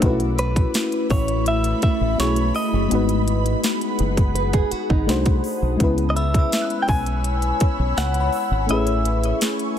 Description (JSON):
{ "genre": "contemporary R&B", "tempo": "83 BPM", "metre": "4/4", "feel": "straight", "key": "C# minor", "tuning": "A4 = 441 Hz", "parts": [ { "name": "mellow FM electric piano", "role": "accompaniment", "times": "0.0-9.8 s", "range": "G#3 to C5", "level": "-25 LUFS", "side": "left 3 dB", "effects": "chorus" }, { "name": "ethereal airy pad", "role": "sustained chords", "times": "0.0-9.8 s", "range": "A3 to E6", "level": "-26 LUFS", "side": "left 1 dB", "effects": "ensemble chorus, built-in reverb" }, { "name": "deep dub fingered electric bass", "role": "bass", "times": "0.0-9.3 s", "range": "F#1 to C#2", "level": "-22 LUFS", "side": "equal", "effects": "none" }, { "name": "trap drum kit", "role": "drums", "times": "0.0-9.8 s", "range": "hi-hat, kick drum, snare drum", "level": "-22 LUFS", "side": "equal", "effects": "none" }, { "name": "direct-recorded clean electric guitar", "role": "melody", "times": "0.4-9.4 s", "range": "B4 to G#5", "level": "-26 LUFS", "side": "equal", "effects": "phaser, ping-pong delay" }, { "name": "nylon-string guitar", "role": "arpeggios", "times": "4.4-5.2 s", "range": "D#4 to B4", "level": "-29 LUFS", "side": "right 10 dB", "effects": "ping-pong delay" }, { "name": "synth chime", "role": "texture", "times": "6.2-9.2 s", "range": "G#5 to F#6", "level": "-35 LUFS", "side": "left 2 dB", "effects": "ensemble chorus, phaser, ping-pong delay" } ], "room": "little or no reverb", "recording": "none", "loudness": "-18 LUFS", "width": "side -9 dB against mid", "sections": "0.0-9.8 A section", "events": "none", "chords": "0.0 B7sus4; 2.9 G#m7; 5.1 Cdim7; 5.8 C#m7; 8.7 Amaj7" }